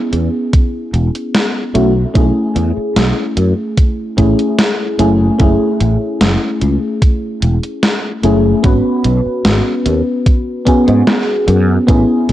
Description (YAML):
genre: vaporwave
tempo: 74 BPM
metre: 4/4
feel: straight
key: unclear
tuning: A4 = 441 Hz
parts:
  - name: mellow FM electric piano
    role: accompaniment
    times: 0.0-12.3 s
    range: A3 to B4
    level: -15 LUFS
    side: equal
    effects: wide subtle chorus, tape echo
  - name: sustaining fretless electric bass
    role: bass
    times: 0.1-12.3 s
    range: E1 to G#2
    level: -14 LUFS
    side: equal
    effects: ensemble chorus
  - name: gated 80s digital drum machine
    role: drums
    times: 0.1-12.3 s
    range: hi-hat, snare drum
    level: -15 LUFS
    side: equal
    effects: gated reverb, gated reverb snare, studio ambience
  - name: electronic kick drum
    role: drums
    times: 0.5-12.1 s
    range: none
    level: -12 LUFS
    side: equal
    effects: studio ambience
room: digital ambience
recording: dry, gritty hardware recording, cassette tape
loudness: -11 LUFS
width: side -13 dB against mid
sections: 0.0-12.3 A section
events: none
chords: 0.0 Amaj9 (rootless); 1.7 B7sus4; 5.0 F#m9; 8.6 Bsus2/G#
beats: 0.53 1.34 | 2.15 2.97 3.78 4.59 | 5.40 6.21 7.02 7.83 | 8.64 9.45 10.26 11.07 | 11.88